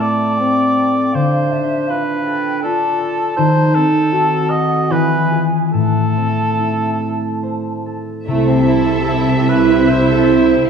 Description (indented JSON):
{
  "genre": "classical, slow romantic movement for symphony orchestra",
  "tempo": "68-82 BPM",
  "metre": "3/4",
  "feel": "rubato",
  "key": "A minor",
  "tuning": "A4 = 439 Hz",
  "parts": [
    { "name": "mellow clarinet", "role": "second line", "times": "0.0-7.9 s", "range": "A3 to F#4", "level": "-21 LUFS", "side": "right 1 dB", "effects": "none" },
    { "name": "mellow hollow flute section", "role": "second line", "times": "0.0-7.9 s", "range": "E5 to A5", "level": "-22 LUFS", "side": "left 2 dB", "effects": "none" },
    { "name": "warm cor anglais", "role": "second line", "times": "0.0-10.7 s", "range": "A4 to D#5", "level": "-19 LUFS", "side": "right 1 dB", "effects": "none" },
    { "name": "concert harp", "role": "arpeggios", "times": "0.0-10.7 s", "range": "A2 to E5", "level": "-19 LUFS", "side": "left 2 dB", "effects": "none" },
    { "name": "muted symphonic violin section", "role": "melody", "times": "8.3-10.7 s", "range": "E5", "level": "-26 LUFS", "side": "left 3 dB", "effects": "none" },
    { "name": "muted symphonic violin section", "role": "second line", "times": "8.3-10.7 s", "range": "A3 to A4", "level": "-20 LUFS", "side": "left 1 dB", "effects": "none" },
    { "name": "muted studio viola section", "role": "accompaniment", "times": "8.3-10.7 s", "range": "E4", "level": "-17 LUFS", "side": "right 8 dB", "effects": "none" },
    { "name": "mellow French horn section", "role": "sustained chords", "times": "8.3-8.6 s", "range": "A3 to E4", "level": "-21 LUFS", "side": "right 5 dB", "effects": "none" },
    { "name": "muted symphonic cello section", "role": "bass", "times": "8.3-10.7 s", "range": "C3", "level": "-18 LUFS", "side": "right 1 dB", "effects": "none" },
    { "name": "muted symphonic double bass section", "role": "bass", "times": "8.3-10.7 s", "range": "C2", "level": "-21 LUFS", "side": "right 5 dB", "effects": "none" }
  ],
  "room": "wet concert hall reverb, RT60 2.0 s",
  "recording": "studio ambience",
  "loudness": "-13 LUFS",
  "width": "side -6 dB against mid",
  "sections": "0.0-8.3 A section; 8.3-10.7 B section",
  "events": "none",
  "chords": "0.0 Am; 1.1 Dm7; 3.4 D#dim7; 4.9 E; 5.7 Am; 8.3 Am/C",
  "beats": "0.39 | 1.13 1.88 2.63 | 3.37 4.12 4.90 | 5.73 6.59 7.43 | 8.29 9.10 9.90"
}